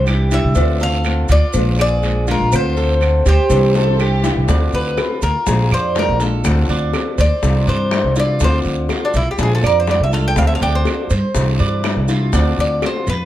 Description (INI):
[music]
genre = latin, Cuban son and guajira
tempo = 122 BPM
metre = 4/4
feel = straight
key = unclear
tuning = A4 = 445 Hz
[part]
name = Cuban tres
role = melody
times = 0.0-13.3 s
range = D4 to G5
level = -20 LUFS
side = left 2 dB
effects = none
[part]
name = flamenco guitar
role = accompaniment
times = 0.0-13.1 s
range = C3 to F4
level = -24 LUFS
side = left 4 dB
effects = none
[part]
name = Cuban tres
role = arpeggios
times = 0.0-13.3 s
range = D4 to D5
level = -24 LUFS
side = right 6 dB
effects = none
[part]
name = upright bass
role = bass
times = 0.0-13.2 s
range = Bb1 to G2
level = -16 LUFS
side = equal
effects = none
[part]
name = claves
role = percussion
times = 0.1-13.1 s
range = none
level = -29 LUFS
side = right 10 dB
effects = none
[part]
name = cowbell and bongos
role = percussion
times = 0.1-13.1 s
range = none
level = -26 LUFS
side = left 4 dB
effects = none
[part]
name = guiro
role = percussion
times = 0.1-13.3 s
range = none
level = -32 LUFS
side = right 4 dB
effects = none
[part]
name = maracas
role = percussion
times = 0.1-13.3 s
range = none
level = -33 LUFS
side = right 7 dB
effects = none
[part]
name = dark studio violin section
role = second line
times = 3.8-4.5 s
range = G4 to A4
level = -24 LUFS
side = right 3 dB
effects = none
[sound]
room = light reverb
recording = dark, warm production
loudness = -14 LUFS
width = side -13 dB against mid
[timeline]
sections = 0.0-4.5 A section; 4.5-13.3 B section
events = drum fill 3.8-4.5; Cuban tres solo 4.5-13.3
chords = 0.0 Cadd9; 0.6 Dm7; 1.5 Bb7; 2.5 Dm7; 3.5 Cadd9; 4.5 Dm7; 5.5 Bb7; 6.5 Dm7; 7.4 Cadd9; 8.4 Dm7; 9.4 Bb7; 10.4 Dm7; 11.4 Cadd9; 12.3 Dm7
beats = 0.07 | 0.56 1.05 1.54 2.04 | 2.53 3.02 3.51 4.00 | 4.49 4.98 5.47 5.96 | 6.45 6.94 7.43 7.92 | 8.41 8.90 9.39 9.88 | 10.38 10.87 11.36 11.85 | 12.34 12.83